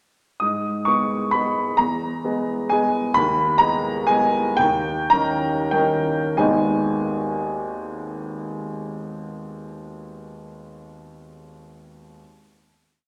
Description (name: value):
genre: classical, piano waltz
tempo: 88-139 BPM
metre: 3/4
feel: rubato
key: G# minor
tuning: A4 = 441 Hz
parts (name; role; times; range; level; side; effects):
- warm upright piano; solo; 0.4-12.2 s; G#1 to D#6; -22 LUFS; equal; none
room: wet recital hall reverb, RT60 1.4 s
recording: none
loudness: -22 LUFS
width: mono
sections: 0.4-6.4 A section; 6.4-10.1 final chord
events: slowing down 2.5-6.4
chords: 0.4 G#m; 1.8 E; 3.2 G#m/D#; 4.6 D#7; 6.4 G#m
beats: | 0.43 0.88 1.34 | 1.79 2.25 2.72 | 3.17 3.61 4.09 | 4.59 5.12 5.72 | 6.38 6.99 7.63 | 8.23 8.84 9.46